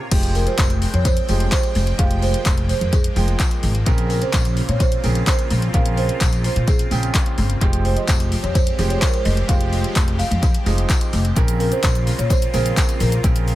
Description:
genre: dance-pop.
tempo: 128 BPM.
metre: 4/4.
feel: straight.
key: F minor.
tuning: A4 = 441 Hz.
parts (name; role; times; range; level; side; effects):
supersaw pad; sustained chords; 0.0-13.6 s; Db3 to G5; -30 LUFS; equal; phaser, sidechain pumping.
clear grand piano; accompaniment; 0.1-13.6 s; Db3 to G5; -28 LUFS; right 5 dB; sidechain pumping.
upright bass; bass; 0.1-13.6 s; F1 to Bb2; -20 LUFS; equal; sidechain pumping.
punchy analog drum machine; drums; 0.1-13.6 s; crash cymbal, handclaps, hi-hat, kick drum, shaker; -19 LUFS; equal; none.
tambourine; percussion; 0.1-13.3 s; none; -35 LUFS; left 8 dB; tape echo.
marimba with medium mallets; melody; 0.4-13.6 s; Ab4 to F5; -26 LUFS; right 3 dB; tape echo.
room: light reverb, studio ambience.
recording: echo-heavy mix.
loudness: -16 LUFS.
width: side -15 dB against mid.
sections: 0.1-13.6 A section.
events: none.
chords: 0.1 Fmadd9; 3.9 Bbmadd9; 7.6 Fmadd9; 11.4 Bbmadd9.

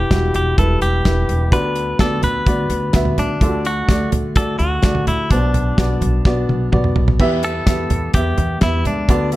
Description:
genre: piano-driven pop.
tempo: 127 BPM.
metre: 4/4.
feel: straight.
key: E minor.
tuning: A4 = 438 Hz.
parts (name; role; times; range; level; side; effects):
direct-recorded clean electric guitar; melody; 0.0-9.3 s; D4 to B4; -23 LUFS; left 1 dB; none.
warm upright piano; accompaniment; 0.0-9.4 s; B2 to E5; -21 LUFS; equal; none.
upright bass; bass; 0.0-9.4 s; E1 to E2; -20 LUFS; equal; none.
damped 70s drum kit; drums; 0.1-9.4 s; crash cymbal, hi-hat, kick drum, snare drum, toms; -17 LUFS; equal; none.
room: light reverb, small room reverb.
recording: none.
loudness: -15 LUFS.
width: side -16 dB against mid.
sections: 0.0-7.2 A section; 7.2-9.4 B section.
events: drum fill 6.3-7.2.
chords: 0.0 Em; 1.5 Bm/D; 3.4 D; 5.3 Bm; 7.2 Em.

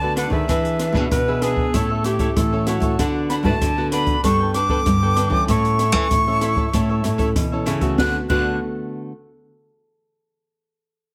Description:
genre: samba and choro.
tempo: 96 BPM.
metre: 4/4.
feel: straight.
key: D major.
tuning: A4 = 439 Hz.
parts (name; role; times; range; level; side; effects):
jazz flute; melody; 0.0-8.6 s; E5 to F#6; -25 LUFS; equal; plate reverb.
cavaquinho; accompaniment; 0.0-8.6 s; D4 to G5; -30 LUFS; equal; none.
nylon-string guitar; accompaniment; 0.0-9.1 s; A2 to B4; -29 LUFS; equal; none.
nylon-string guitar; bass; 0.0-8.6 s; G2 to E3; -24 LUFS; equal; none.
open jazz drum kit; drums; 0.2-8.4 s; crash cymbal, hi-hat, kick drum, rim click, snare drum; -26 LUFS; equal; none.
breathy tenor saxophone; second line; 1.1-3.1, 8.0-8.6 s; F#4 to B4; -27 LUFS; equal; none.
room: light reverb.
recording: none.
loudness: -20 LUFS.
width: mono.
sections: 0.0-8.0 A section; 8.0-10.5 B section.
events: none.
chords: 0.5 E7; 1.7 A; 3.0 D6; 4.2 Gadd9; 5.5 A; 8.0 D6.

